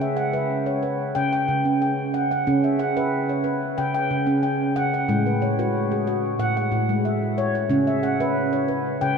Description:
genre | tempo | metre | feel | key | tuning
world meditative, meditative tuned percussion | 92 BPM | 4/4 | straight | unclear | A4 = 440 Hz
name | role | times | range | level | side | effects
handpan | solo | 0.0-9.2 s | A2 to G5 | -20 LUFS | equal | diffuse ambient delay
room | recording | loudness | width
wet huge ambient reverb, RT60 8.3 s | in a vast, echoing space | -20 LUFS | side -6 dB against mid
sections
0.0-9.2 A section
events
none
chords
0.0 C#m; 5.1 A; 7.7 C#m

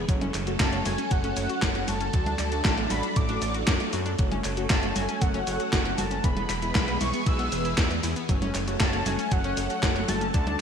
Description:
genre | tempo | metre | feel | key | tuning
italo disco | 117 BPM | 4/4 | straight | F# minor | A4 = 440 Hz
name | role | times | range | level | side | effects
phased string machine | sustained chords | 0.0-10.6 s | E3 to A4 | -32 LUFS | equal | ensemble chorus, phaser
analog pluck | arpeggios | 0.0-10.6 s | E3 to D5 | -36 LUFS | left 4 dB | chorus, digital delay
fat analog bass | bass | 0.0-10.6 s | E1 to F#2 | -31 LUFS | equal | none
mellow synth brass | stabs | 0.1-10.6 s | G#3 to D5 | -35 LUFS | right 2 dB | chorus
electronic kick drum | drums | 0.1-10.4 s | none | -26 LUFS | equal | overdrive
gated 80s digital drum machine | drums | 0.1-10.6 s | cabasa, congas, handclaps, hi-hat, snare drum | -29 LUFS | equal | gated reverb, gated reverb snare
wide unison lead | melody | 0.6-10.6 s | F#5 to E6 | -32 LUFS | equal | analog chorus, digital delay
room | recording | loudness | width
light reverb | bright 1980s-style digital production | -23 LUFS | side -7 dB against mid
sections
0.0-10.6 A section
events
none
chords
0.1 F#m; 2.1 D; 4.2 F#m; 6.2 E; 8.3 F#m

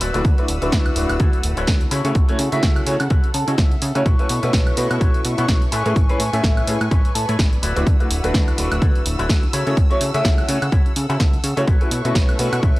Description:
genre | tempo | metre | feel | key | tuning
filtered disco house | 126 BPM | 4/4 | swing 57% on 16ths | unclear | A4 = 441 Hz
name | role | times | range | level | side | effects
rich chamber violin section | sustained chords | 0.0-12.8 s | A4 to E6 | -32 LUFS | equal | sidechain pumping
electric guitar with an envelope filter | riff | 0.0-12.8 s | E4 to A5 | -28 LUFS | left 2 dB | sidechain pumping
plucky analog bass | bass | 0.0-12.8 s | D1 to C#3 | -23 LUFS | equal | sidechain pumping
punchy analog drum machine | drums | 0.0-12.8 s | hi-hat, snare drum, woodblock | -25 LUFS | equal | sidechain pumping on hats, sidechain pumping on perc
clear baby grand piano | accompaniment | 0.1-12.8 s | A3 to G#5 | -24 LUFS | equal | phaser, sidechain pumping
electronic kick drum | drums | 0.2-12.7 s | none | -17 LUFS | equal | overdrive
room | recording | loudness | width
digital ambience | dry, gritty hardware recording, cassette tape | -16 LUFS | side -18 dB against mid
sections
0.0-12.8 A section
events
clean electric guitar fill 3.1-4.1, 6.9-7.9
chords
0.0 D69; 1.9 F#m7/C#; 4.1 B9sus4; 5.7 Amaj9; 7.6 D69; 9.5 F#m7/C#; 11.7 B9sus4

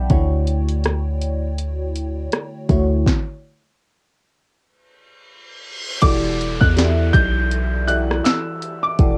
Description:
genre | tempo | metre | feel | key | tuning
contemporary R&B | 81 BPM | 4/4 | swing 58% on 16ths | E minor from 6.0 s | A4 = 440 Hz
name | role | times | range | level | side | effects
FM electric piano with soft pad layer | accompaniment | 0.0-9.2 s | D3 to B5 | -26 LUFS | equal | chorus, phaser, cassette tape
warm 808-style bass | bass | 0.0-9.2 s | E1 to E2 | -22 LUFS | equal | none
smooth R&B drum kit | drums | 0.1-9.2 s | crash cymbal, hi-hat, kick drum, rim click, snare drum | -21 LUFS | equal | overdrive, vintage 12-bit sampler grit, cassette tape
reverse cymbal and downlifter | sound effects | 5.3-9.2 s | none | -35 LUFS | equal | none
warm baby grand piano | melody | 6.0-9.2 s | D6 to G6 | -25 LUFS | equal | cassette tape
room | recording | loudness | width
light reverb | home recording on cassette | -19 LUFS | mono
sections
0.0-6.0 A section; 6.0-9.2 B section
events
stop 3.1-6.0; reverse cymbal 5.3-6.0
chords
0.1 Dmaj9; 3.1 N.C.; 6.0 Em11

